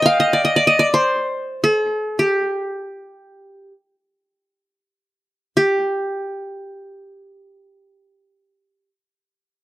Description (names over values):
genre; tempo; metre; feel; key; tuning
Arabic maqam ensemble; free time; none; none; G maqam bayati; A4 = 440 Hz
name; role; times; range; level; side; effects
qanun; solo; 0.0-8.9 s; G4 to G5; -16 LUFS; equal; none
room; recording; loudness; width
little or no reverb; recorded outdoors, with no room sound; -16 LUFS; side -16 dB against mid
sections
0.0-5.6 A section; 5.6-9.6 B section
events
none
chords
none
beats
free time